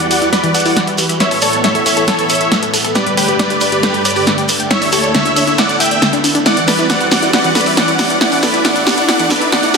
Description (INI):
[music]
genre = uplifting trance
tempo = 137 BPM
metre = 4/4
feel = straight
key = E dorian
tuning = A4 = 440 Hz
[part]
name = big supersaw lead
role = melody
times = 0.0-9.8 s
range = G4 to G5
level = -15 LUFS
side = equal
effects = low-pass filter, ping-pong delay
[part]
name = supersaw pad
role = sustained chords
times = 0.0-9.8 s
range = D2 to E5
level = -20 LUFS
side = equal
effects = phaser
[part]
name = wide unison pluck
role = arpeggios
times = 0.0-9.8 s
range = D3 to A5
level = -20 LUFS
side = left 2 dB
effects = dub echo
[part]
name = punchy analog drum machine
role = drums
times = 0.0-9.8 s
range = hi-hat, snare drum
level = -16 LUFS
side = equal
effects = none
[part]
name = shekere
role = percussion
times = 0.0-9.8 s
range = none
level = -22 LUFS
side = right 4 dB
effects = none
[part]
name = riser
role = sound effects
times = 1.4-9.8 s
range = none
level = -24 LUFS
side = right 2 dB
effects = none
[sound]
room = moderate digital room reverb, RT60 1.2 s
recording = dense, heavily limited modern master, high-pass filter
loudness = -11 LUFS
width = side -4 dB against mid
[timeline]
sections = 0.0-9.8 A section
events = build-up 0.0-9.8; drum fill 0.0-9.8; riser 1.4-9.8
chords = 0.0 Emadd9; 1.2 Asus2; 3.0 Gsus2; 4.7 Dsus2; 6.5 Emadd9; 8.2 Asus2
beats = 0.33 0.77 | 1.20 1.64 2.08 2.52 | 2.96 3.39 3.83 4.27 | 4.71 5.14 5.58 6.02 | 6.46 6.90 7.33 7.77 | 8.21 8.65 9.09 9.53